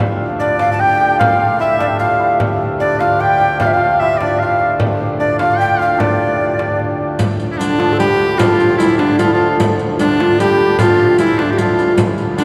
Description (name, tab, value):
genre	medieval dance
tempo	150 BPM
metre	3/4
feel	straight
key	D minor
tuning	A4 = 441 Hz
part	hammered dulcimer	second line	0.0-12.4 s	D3 to G4	-22 LUFS	equal	none
part	pedal harmonium	drone	0.0-12.4 s	D2 to A2	-28 LUFS	equal	none
part	breathy mellow tenor recorder	melody	0.4-12.4 s	D4 to A5	-18 LUFS	equal	none
part	edgy shawm	second line	0.4-12.4 s	D4 to G5	-23 LUFS	equal	none
part	frame drum	percussion	0.6-12.2 s	none	-24 LUFS	equal	none
part	riq	percussion	7.2-12.4 s	none	-25 LUFS	equal	none
room	wet cathedral reverb, RT60 5.6 s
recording	recorded in a church or concert hall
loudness	-14 LUFS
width	mono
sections	0.0-7.2 A section; 7.2-12.4 A section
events	none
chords	none